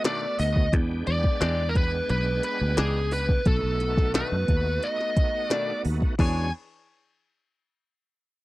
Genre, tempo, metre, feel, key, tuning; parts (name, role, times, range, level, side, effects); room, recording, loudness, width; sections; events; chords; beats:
straight-eighth soul blues; 88 BPM; 4/4; straight; E mixolydian; A4 = 440 Hz
smooth overdriven lead guitar; melody; 0.0-6.5 s; G#4 to G#5; -27 LUFS; equal
bright tonewheel organ; accompaniment; 0.0-6.5 s; G#3 to G5; -34 LUFS; right 4 dB; overdrive, chorus vibrato, slow rotary speaker
direct-recorded clean electric guitar; stabs; 0.0-6.5 s; B2 to C#5; -32 LUFS; left 4 dB; spring reverb
glitchy drum kit; drums; 0.0-6.3 s; crash cymbal, hi-hat, kick drum, snare drum; -24 LUFS; equal
fingered electric bass; bass; 0.4-6.5 s; B1 to F#2; -26 LUFS; equal
little or no reverb; dry, close 1970s-style studio recording; -22 LUFS; side -18 dB against mid
0.0-6.2 A section; 6.2-8.4 B section
0.0 B7#9; 0.7 E7#9; 3.5 B7#9; 6.2 E13
0.05 | 0.73 1.41 2.09 2.78 | 3.46 4.14 4.83 5.51 | 6.19